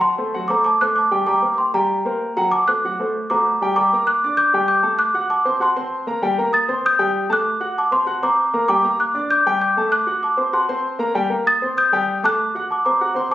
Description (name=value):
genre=latin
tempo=194 BPM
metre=4/4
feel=straight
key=unclear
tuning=A4 = 439 Hz
part: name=worn celesta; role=melody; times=0.0-13.3 s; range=G5 to A6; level=-17 LUFS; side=equal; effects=none
part: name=warm upright piano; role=accompaniment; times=0.0-13.3 s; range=F#3 to F#6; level=-22 LUFS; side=left 1 dB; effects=none
room=light reverb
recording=recorded on a phone in the room, studio reverb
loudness=-16 LUFS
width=side -14 dB against mid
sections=0.0-3.8 A section; 3.8-13.3 B section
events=none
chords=0.0 D7; 1.3 C5; 2.5 D7; 3.8 Gm; 5.0 D7; 6.2 Cm7; 7.5 D7; 8.7 Gm; 9.9 D7; 11.1 Cm7; 12.4 D7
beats=| 0.03 0.34 0.66 0.97 | 1.28 1.59 1.90 2.21 | 2.52 2.83 3.14 3.45 | 3.76 4.07 4.38 4.68 | 4.99 5.30 5.61 5.92 | 6.23 6.54 6.84 7.15 | 7.46 7.77 8.07 8.38 | 8.69 9.00 9.30 9.61 | 9.92 10.23 10.53 10.84 | 11.15 11.46 11.77 12.07 | 12.38 12.69 13.00 13.31